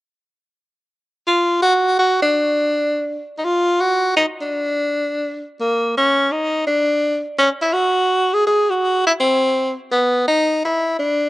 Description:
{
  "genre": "jazz",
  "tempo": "167 BPM",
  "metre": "3/4",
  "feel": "swing 64% on 8ths",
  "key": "unclear",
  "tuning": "A4 = 440 Hz",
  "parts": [
    { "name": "clear tenor saxophone", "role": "solo", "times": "1.3-11.3 s", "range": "Bb3 to Ab4", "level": "-16 LUFS", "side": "equal", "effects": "none" }
  ],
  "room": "moderate spring reverb, RT60 2.0 s",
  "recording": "worn, warbling old tape, cassette tape, warbly pitch drift",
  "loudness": "-16 LUFS",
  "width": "side -18 dB against mid",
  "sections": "1.3-5.6 A section; 5.6-11.3 B section",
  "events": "none",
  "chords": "none"
}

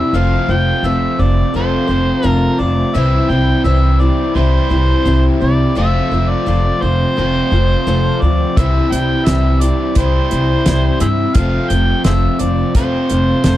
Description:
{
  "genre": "folk rock and heartland rock",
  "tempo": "86 BPM",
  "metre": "4/4",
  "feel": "straight",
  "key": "unclear",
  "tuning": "A4 = 440 Hz",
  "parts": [
    { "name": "overdriven harmonica", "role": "melody", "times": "0.0-13.6 s", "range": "Ab4 to G5", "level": "-20 LUFS", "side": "equal", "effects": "none" },
    { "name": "picked twelve-string acoustic guitar", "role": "accompaniment", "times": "0.0-13.6 s", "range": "C3 to C5", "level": "-21 LUFS", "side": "left 3 dB", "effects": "none" },
    { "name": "overdriven electric guitar", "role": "riff", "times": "0.0-13.6 s", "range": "F2 to F4", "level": "-19 LUFS", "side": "right 1 dB", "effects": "none" },
    { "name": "upright bass", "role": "bass", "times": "0.1-13.6 s", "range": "F1 to G2", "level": "-15 LUFS", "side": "equal", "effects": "none" },
    { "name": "damped 70s drum kit", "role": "drums", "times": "8.6-13.6 s", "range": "hi-hat, kick drum, snare drum", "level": "-16 LUFS", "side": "equal", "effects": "none" }
  ],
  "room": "little or no reverb",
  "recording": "dark, warm production",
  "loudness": "-12 LUFS",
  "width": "side -14 dB against mid",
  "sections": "0.0-13.6 A section",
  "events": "none",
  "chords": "0.1 F; 3.0 C; 5.8 F; 8.6 C; 11.4 F"
}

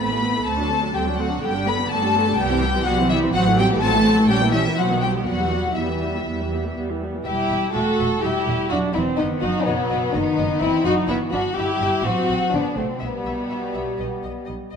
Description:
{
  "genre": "quick classical-period movement for string orchestra",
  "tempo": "124 BPM",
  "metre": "4/4",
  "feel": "straight",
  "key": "E minor",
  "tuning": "A4 = 435 Hz",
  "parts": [
    { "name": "rich studio violin section", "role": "melody", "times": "0.0-14.8 s", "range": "C5 to B5", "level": "-26 LUFS", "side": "left 5 dB", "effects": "none" },
    { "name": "warm studio violin section", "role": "second line", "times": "0.0-14.5 s", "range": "B3 to B4", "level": "-24 LUFS", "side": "left 3 dB", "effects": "none" },
    { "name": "warm studio viola section", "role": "accompaniment", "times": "0.0-14.4 s", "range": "D3 to F#4", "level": "-25 LUFS", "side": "right 2 dB", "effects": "none" },
    { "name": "dark chamber double bass section", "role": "bass", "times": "0.0-14.8 s", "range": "E1 to E2", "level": "-28 LUFS", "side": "right 3 dB", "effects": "none" },
    { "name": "dark studio cello section", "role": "bass", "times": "0.0-14.5 s", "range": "B2 to B3", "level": "-25 LUFS", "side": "right 1 dB", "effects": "none" }
  ],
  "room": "moderate scoring stage reverb, RT60 2.0 s",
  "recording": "dark, warm production",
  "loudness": "-18 LUFS",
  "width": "side -6 dB against mid",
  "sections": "0.0-7.3 A section; 7.3-14.8 B section",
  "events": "none",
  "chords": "0.5 D7; 1.4 G; 2.4 Cmaj7; 3.3 F#m7b5/A; 4.3 A#dim7; 4.8 B; 5.3 Em; 9.2 B/F#; 11.1 Em/G; 12.0 F#dim/A; 13.0 Em/B"
}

